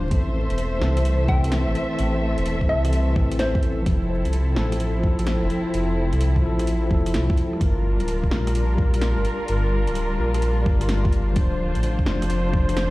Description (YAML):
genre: future garage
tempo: 128 BPM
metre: 4/4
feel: swing 67% on 16ths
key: G dorian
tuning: A4 = 441 Hz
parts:
  - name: bell-like tine electric piano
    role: accompaniment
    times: 0.0-12.9 s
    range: E3 to C5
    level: -27 LUFS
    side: left 2 dB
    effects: fast stereo tremolo, vintage 12-bit sampler grit, sidechain pumping, tape echo
  - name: muted studio string section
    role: sustained chords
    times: 0.0-12.9 s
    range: D3 to E5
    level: -29 LUFS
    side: right 1 dB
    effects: vintage 12-bit sampler grit, sidechain pumping
  - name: dark detuned saw bass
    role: bass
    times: 0.0-12.9 s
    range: D1 to C2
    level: -22 LUFS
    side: equal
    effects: sidechain pumping
  - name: electronic kick drum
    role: drums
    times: 0.1-12.7 s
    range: none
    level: -21 LUFS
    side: equal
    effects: overdrive
  - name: garage drum kit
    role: drums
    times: 0.1-12.9 s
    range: hi-hat, rim click, snare drum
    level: -31 LUFS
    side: right 1 dB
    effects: overdrive
  - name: hollow square pluck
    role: melody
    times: 1.3-3.9 s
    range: C5 to G5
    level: -30 LUFS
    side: left 1 dB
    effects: chorus, analog delay
room: little or no reverb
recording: played on a big sound system in a bare room, stone room reverb, vinyl crackle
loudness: -19 LUFS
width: side -19 dB against mid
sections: 0.0-7.6 A section; 7.6-12.9 A section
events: none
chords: 0.1 Am; 3.9 Fmaj7; 7.6 Gm7; 11.4 Dm7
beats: | 0.11 0.58 1.05 1.52 | 1.99 2.46 2.93 3.40 | 3.86 4.33 4.80 5.27 | 5.74 6.21 6.68 7.14 | 7.61 8.08 8.55 9.02 | 9.49 9.96 10.43 10.89 | 11.36 11.83 12.30 12.77